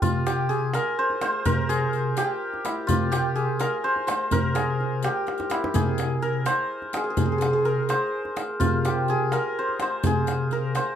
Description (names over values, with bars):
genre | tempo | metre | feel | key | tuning
Persian modal ensemble | 84 BPM (dotted quarters) | 6/8 | straight | C dastgah homayun | A4 = 440 Hz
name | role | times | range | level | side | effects
santur | melody | 0.0-11.0 s | E4 to C5 | -24 LUFS | equal | none
tine electric piano | bass | 0.0-10.8 s | C3 | -27 LUFS | equal | medium stereo tremolo
riq | percussion | 0.0-10.9 s | none | -34 LUFS | left 6 dB | none
tombak | percussion | 0.0-10.9 s | none | -28 LUFS | right 2 dB | none
room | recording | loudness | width
moderate small room reverb, RT60 0.5 s | none | -22 LUFS | side -9 dB against mid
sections
0.0-11.0 A section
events
drum fill 5.3-5.7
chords
none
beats
| 0.02 0.74 | 1.46 2.17 | 2.88 3.60 | 4.32 5.03 | 5.75 6.46 | 7.17 7.89 | 8.61 9.32 | 10.04 10.75